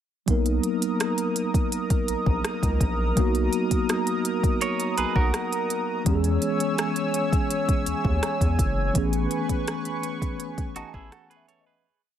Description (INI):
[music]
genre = contemporary R&B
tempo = 83 BPM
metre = 4/4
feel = straight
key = B major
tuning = A4 = 441 Hz
[part]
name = mellow tine electric piano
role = accompaniment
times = 0.3-11.9 s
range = E3 to A5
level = -27 LUFS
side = equal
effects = medium stereo tremolo
[part]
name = chorused pulse-width pad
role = sustained chords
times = 0.3-11.8 s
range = A#4 to E6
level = -30 LUFS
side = equal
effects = none
[part]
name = round analog bass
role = bass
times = 0.3-11.1 s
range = F#1 to E2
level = -26 LUFS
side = equal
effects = none
[part]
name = smooth R&B drum kit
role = drums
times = 0.3-11.7 s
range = hi-hat, kick drum, rim click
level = -25 LUFS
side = equal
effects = none
[part]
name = clean electric guitar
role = arpeggios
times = 4.6-6.0, 10.8-12.0 s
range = D#4 to C#5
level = -30 LUFS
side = right 6 dB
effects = digital delay
[sound]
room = little or no reverb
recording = none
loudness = -22 LUFS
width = side -10 dB against mid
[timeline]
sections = 0.3-11.8 verse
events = fade-out 9.0-11.8; tine electric piano fill 10.4-11.8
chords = 0.3 Bmaj7; 6.1 E6; 9.0 Amaj9